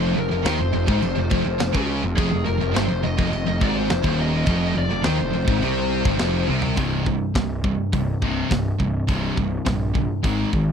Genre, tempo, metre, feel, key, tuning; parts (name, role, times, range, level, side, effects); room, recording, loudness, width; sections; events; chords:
heavy metal; 104 BPM; 4/4; straight; C minor; A4 = 440 Hz
lead guitar through a small cranked amp; melody; 0.0-6.5 s; Ab4 to Eb5; -27 LUFS; left 3 dB; overdrive
pipe organ, soft reed; sustained chords; 0.0-6.7 s; C3 to F4; -37 LUFS; right 2 dB
heavy high-gain guitar; riff; 0.0-6.8 s; Eb2 to Eb3; -29 LUFS; right 1 dB; distortion
scooped high-gain guitar; riff; 0.0-10.7 s; C2 to Ab3; -27 LUFS; right 11 dB; distortion
sludgy distorted guitar; riff; 0.0-10.7 s; C2 to Ab3; -26 LUFS; left 8 dB; overdrive
fuzz picked electric bass; bass; 0.0-10.7 s; C1 to Eb2; -25 LUFS; equal; overdrive
tight metal drum kit; drums; 0.5-10.7 s; china cymbal, hi-hat, kick drum, snare drum, toms; -24 LUFS; equal
little or no reverb; dry, close 1970s-style studio recording; -19 LUFS; side -7 dB against mid
0.0-6.8 A section; 6.8-10.7 B section
drum fill 6.5
0.0 F5; 6.8 C5